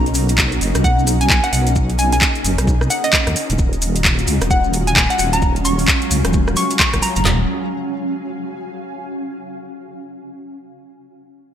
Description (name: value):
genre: UK garage, two-step garage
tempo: 131 BPM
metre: 4/4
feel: swing 60% on 16ths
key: Eb minor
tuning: A4 = 440 Hz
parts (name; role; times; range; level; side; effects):
- soft string machine; sustained chords; 0.0-7.5 s; Ab3 to Ab4; -28 LUFS; equal; ensemble chorus, sidechain pumping
- deep soft wobble bass; bass; 0.0-7.5 s; Eb1 to D#2; -18 LUFS; equal; chorus, sidechain pumping
- granular cloud pad; texture; 0.0-9.0 s; Gb3 to Bb5; -25 LUFS; right 1 dB; built-in reverb, analog chorus, sidechain pumping
- garage drum kit; drums; 0.1-7.2 s; handclaps, hi-hat, rim click; -18 LUFS; equal; overdrive, gated reverb
- maracas; percussion; 0.1-7.2 s; none; -28 LUFS; left 3 dB; none
- garage drum kit; drums; 0.4-7.4 s; handclaps, kick drum, snare drum, toms; -19 LUFS; equal; overdrive
- hollow square pluck; melody; 0.8-7.2 s; D#5 to Db6; -22 LUFS; left 1 dB; chorus, digital delay
room: light reverb, digital ambience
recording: bright 1980s-style digital production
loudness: -14 LUFS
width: side -10 dB against mid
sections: 0.0-7.3 A section; 7.3-9.1 B section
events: drop 0.0-7.3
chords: 0.0 Bmaj9; 3.4 Ebm11; 7.3 Ebm11 (rootless)